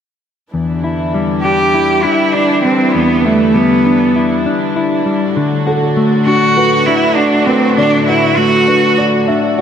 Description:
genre	rock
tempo	99 BPM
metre	4/4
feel	straight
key	E minor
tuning	A4 = 439 Hz
part	warm studio string section	sustained chords	0.5-9.6 s	A2 to F#4	-20 LUFS	equal	none
part	mellow electric guitar	arpeggios	0.5-9.6 s	E2 to F#4	-15 LUFS	left 3 dB	tape echo
part	clear cello	melody	1.4-9.0 s	A3 to G4	-12 LUFS	right 2 dB	slapback echo, tape echo
part	felt-muted upright piano	arpeggios	5.7-9.6 s	A4 to E5	-20 LUFS	right 3 dB	slapback echo, tape echo
room	wet lush hall reverb, RT60 1.7 s, small room ambience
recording	big arena sound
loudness	-10 LUFS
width	side -8 dB against mid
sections	0.5-9.6 A section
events	none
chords	0.5 Em7; 5.4 D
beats	| 0.54 1.14 1.74 2.35 | 2.95 3.56 4.16 4.76 | 5.37 5.97 6.57 7.18 | 7.78 8.38 8.98 9.59

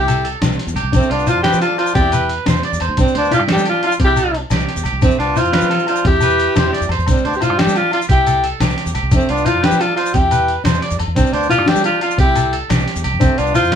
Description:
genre	highlife guitar band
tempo	117 BPM (dotted quarters)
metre	12/8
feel	straight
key	unclear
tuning	A4 = 439 Hz
part	breathy alto saxophone	melody	0.0-13.8 s	C4 to G4	-16 LUFS	equal	none
part	growling tenor saxophone	second line	0.0-13.8 s	G3 to E4	-28 LUFS	left 3 dB	none
part	nylon-string guitar	accompaniment	0.0-13.8 s	C4 to E4	-23 LUFS	left 5 dB	none
part	electric guitar at the edge of break-up	arpeggios	0.0-13.8 s	F4 to D5	-23 LUFS	right 5 dB	none
part	fingered electric bass	bass	0.0-13.8 s	C2 to G3	-22 LUFS	equal	none
part	lo-fi sampler-style drum kit	drums	0.1-13.8 s	hi-hat, kick drum, snare drum	-20 LUFS	right 1 dB	none
part	agogo bells	percussion	0.1-13.7 s	none	-29 LUFS	left 6 dB	none
part	shekere	percussion	0.1-13.8 s	none	-22 LUFS	left 2 dB	none
room	moderate studio ambience, RT60 0.5 s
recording	band playing live in one room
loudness	-13 LUFS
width	side -8 dB against mid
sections	0.0-13.8 A section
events	none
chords	0.0 Cadd9; 0.9 Fadd9; 2.0 Cadd9/E; 3.0 Gsus4; 4.0 Cadd9; 5.0 Fadd9; 6.0 Cadd9/E; 7.1 Gsus4; 8.1 Cadd9; 9.1 Fadd9; 10.1 Cadd9/E; 11.2 Gsus4; 12.2 Cadd9; 13.2 Fadd9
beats	0.42 | 0.94 1.45 1.96 2.47 | 2.98 3.49 4.00 4.51 | 5.02 5.53 6.05 6.56 | 7.07 7.58 8.09 8.61 | 9.12 9.63 10.14 10.65 | 11.16 11.68 12.19 12.70 | 13.21 13.72

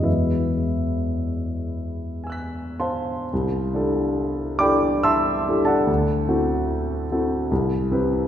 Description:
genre	classical, impressionist solo piano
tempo	51-75 BPM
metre	3/4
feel	rubato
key	E major, C major from 3.3 s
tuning	A4 = 440 Hz
part	warm concert grand piano	solo	0.0-8.3 s	C2 to B6	-20 LUFS	equal	none
room	wet concert hall reverb, RT60 2.2 s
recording	heard from further back in the room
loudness	-20 LUFS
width	side -10 dB against mid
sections	0.0-3.3 A section; 3.3-8.3 B section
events	none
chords	0.1 Eadd9; 3.3 C69; 5.9 D9; 7.5 Cmaj7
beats	| 0.06 1.14 2.24 | 3.31 4.17 5.05 | 5.89 6.70 7.51

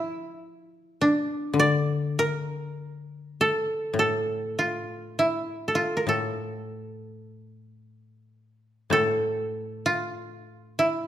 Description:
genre	japanese traditional, Japanese chamber music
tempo	50 BPM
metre	4/4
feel	rubato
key	A miyako bushi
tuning	A4 = 440 Hz
part	koto	melody	0.0-11.1 s	D4 to D5	-25 LUFS	right 1 dB	none
part	koto	accompaniment	0.0-11.1 s	A2 to F3	-30 LUFS	left 3 dB	none
part	taiko ensemble	percussion	8.9-9.2 s	none	-35 LUFS	right 8 dB	none
room	moderate recital hall reverb, RT60 1.4 s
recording	none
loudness	-24 LUFS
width	side -11 dB against mid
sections	0.0-8.9 A section; 8.9-11.1 B section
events	none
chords	none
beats	0.36 1.55 2.74 | 3.95 5.14 6.37 7.65 | 8.92 10.16

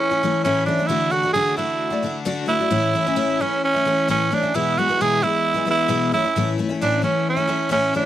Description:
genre	rock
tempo	132 BPM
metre	4/4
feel	straight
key	A major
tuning	A4 = 438 Hz
part	growling tenor saxophone	melody	0.0-8.1 s	C#4 to G#4	-20 LUFS	right 3 dB	none
part	picked twelve-string acoustic guitar	accompaniment	0.0-8.1 s	E2 to F#4	-22 LUFS	left 4 dB	wide subtle chorus
room	little or no reverb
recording	dry, close 1970s-style studio recording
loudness	-18 LUFS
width	side -12 dB against mid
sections	0.0-8.1 A section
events	none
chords	0.0 A; 0.9 D; 2.7 A; 4.5 E; 6.1 A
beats	0.44 | 0.90 1.35 1.80 2.26 | 2.71 3.17 3.62 4.07 | 4.53 4.98 5.44 5.89 | 6.34 6.80 7.25 7.71

